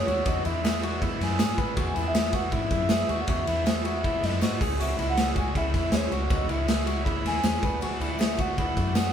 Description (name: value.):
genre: jangly indie pop.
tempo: 159 BPM.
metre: 4/4.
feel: straight.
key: E major.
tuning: A4 = 440 Hz.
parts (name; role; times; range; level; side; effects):
hollow clarinet-like synth lead; melody; 0.0-9.1 s; C#5 to G#5; -30 LUFS; equal; chorus.
overdriven electric guitar; accompaniment; 0.0-9.1 s; E2 to F#4; -34 LUFS; right 4 dB; none.
electric guitar through a small old amp; arpeggios; 0.0-9.1 s; E4 to B4; -32 LUFS; left 2 dB; none.
vintage muted fingered electric bass; bass; 0.1-9.1 s; C#2 to A2; -31 LUFS; left 1 dB; none.
raw garage drum kit; drums; 0.1-9.0 s; hi-hat, kick drum, ride cymbal, snare drum; -27 LUFS; equal; none.
tambourine; percussion; 0.1-9.0 s; none; -47 LUFS; left 4 dB; none.
room: wet studio reverb, RT60 0.9 s.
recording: band playing live in one room.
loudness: -23 LUFS.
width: side -8 dB against mid.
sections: 0.0-9.1 A section.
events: none.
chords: 0.0 E; 4.6 C#m; 7.6 Bm/D.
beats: | 0.26 0.63 1.01 1.39 | 1.77 2.15 2.52 2.90 | 3.28 3.66 4.04 4.42 | 4.79 5.17 5.55 5.93 | 6.31 6.68 7.06 7.44 | 7.82 8.20 8.57 8.95.